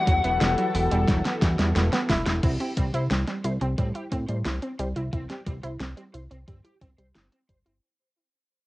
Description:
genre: synthwave.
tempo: 89 BPM.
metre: 4/4.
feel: straight.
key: unclear.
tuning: A4 = 442 Hz.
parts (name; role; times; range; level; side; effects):
biting lead guitar; melody; 0.0-1.7 s; F#5; -27 LUFS; left 4 dB; overdrive, cassette tape, tape echo.
lush unison pad; sustained chords; 0.0-2.4 s; E3 to A4; -33 LUFS; equal; chorus, sidechain pumping, cassette tape.
wide unison pluck; arpeggios; 0.0-7.8 s; F#3 to F#4; -30 LUFS; right 2 dB; cassette tape, analog delay.
raw garage guitar; riff; 0.1-7.7 s; E3 to C5; -38 LUFS; equal; overdrive, ensemble chorus, low-pass filter, cassette tape, analog delay.
fat analog bass; bass; 0.1-7.8 s; E1 to A2; -27 LUFS; equal; sidechain pumping.
electronic kick drum; drums; 0.1-7.6 s; none; -26 LUFS; equal; overdrive, studio reverb.
pop drum kit; drums; 0.1-7.8 s; crash cymbal, hi-hat, snare drum; -29 LUFS; equal; studio reverb.
room: light reverb.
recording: home recording on cassette.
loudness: -23 LUFS.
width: side -18 dB against mid.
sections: 0.0-2.4 A section; 2.4-7.8 B section.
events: drum fill 1.1-2.4; fade-out 2.4-7.8; filter sweep on analog synth bass 2.4-7.8; filter sweep on synth arpeggio sound 2.4-7.8.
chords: 0.0 Emadd9; 2.4 C.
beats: 0.41 1.08 1.76 | 2.43 3.11 3.78 4.46 | 5.13 5.80 6.48 7.15.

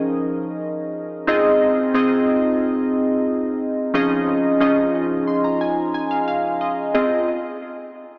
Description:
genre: pop.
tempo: 90 BPM.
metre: 4/4.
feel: straight.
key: F minor.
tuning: A4 = 438 Hz.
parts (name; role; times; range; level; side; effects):
glassy digital keys; solo; 0.0-7.3 s; F3 to C6; -20 LUFS; equal; chorus, analog delay.
room: wet plate reverb, RT60 3.5 s.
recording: dreamy mix soaked in reverb, AM radio sound.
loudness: -20 LUFS.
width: mono.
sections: 0.0-6.9 A section; 6.9-8.2 B section.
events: synth keys fill 4.9-6.9.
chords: 0.0 Eb7sus4/F; 1.3 Fm7; 3.9 Dbadd9/F; 6.9 Fm7.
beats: 0.28 0.94 | 1.61 2.27 2.94 3.61 | 4.28 4.94 5.61 6.28 | 6.94.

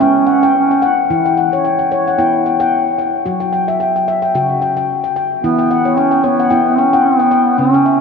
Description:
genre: world meditative, meditative tuned percussion.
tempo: 111 BPM.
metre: 4/4.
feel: swing 55% on 16ths.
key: unclear.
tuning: A4 = 440 Hz.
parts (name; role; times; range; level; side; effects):
mellow duduk; melody; 0.0-1.0, 5.4-8.0 s; B3 to C#4; -16 LUFS; right 5 dB; ping-pong delay.
handpan; arpeggios; 0.0-8.0 s; C#3 to G5; -13 LUFS; left 3 dB; ping-pong delay.
room: wet cathedral reverb, RT60 5.6 s.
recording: in a vast, echoing space.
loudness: -12 LUFS.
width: side -5 dB against mid.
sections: 0.0-8.0 A section.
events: none.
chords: 0.0 C#m; 1.1 E5; 3.3 F#5; 5.4 E5.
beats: 0.01 0.56 | 1.10 1.64 2.18 2.73 | 3.27 3.81 4.35 4.89 | 5.43 5.97 6.51 7.06 | 7.60.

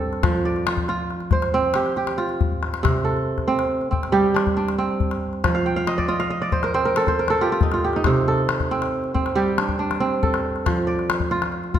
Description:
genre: west african traditional, West African string and xylophone music.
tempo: 92 BPM (dotted quarters).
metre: 12/8.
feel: straight.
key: C dorian.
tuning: A4 = 441 Hz.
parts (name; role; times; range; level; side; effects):
kora; arpeggios; 0.0-11.8 s; C3 to G5; -21 LUFS; right 2 dB; none.
calabash; percussion; 0.1-11.8 s; none; -24 LUFS; left 4 dB; none.
room: wet recital hall reverb, RT60 1.6 s.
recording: none.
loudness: -19 LUFS.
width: side -10 dB against mid.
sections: 0.0-2.8 A section; 2.8-11.8 B section.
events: drum fill 2.5-2.8; kora fill 5.6-8.1.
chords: 0.2 F; 2.8 C5; 5.4 F5; 8.1 C5; 10.7 F.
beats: | 0.23 0.88 1.53 2.19 | 2.84 3.49 4.14 4.79 | 5.44 6.09 6.75 7.40 | 8.05 8.71 9.36 10.01 | 10.66 11.31.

